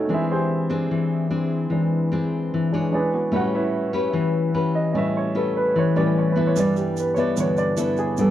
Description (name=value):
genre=bossa nova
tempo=148 BPM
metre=4/4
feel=straight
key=unclear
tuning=A4 = 439 Hz
part: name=nylon-string guitar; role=accompaniment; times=0.0-8.3 s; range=D3 to C#5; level=-22 LUFS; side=left 2 dB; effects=none
part: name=warm grand piano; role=accompaniment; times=0.0-8.3 s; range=G2 to F#5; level=-23 LUFS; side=right 2 dB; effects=none
part: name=tube shaker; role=percussion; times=6.6-8.3 s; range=none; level=-39 LUFS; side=right 7 dB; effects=none
room=moderate studio reverb, RT60 0.7 s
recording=worn, warbling old tape, cassette tape, warbly pitch drift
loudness=-20 LUFS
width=side -12 dB against mid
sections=0.0-8.3 A section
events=grand piano solo 0.0-8.3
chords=0.1 E7alt; 2.9 E13; 3.3 A9; 6.6 G69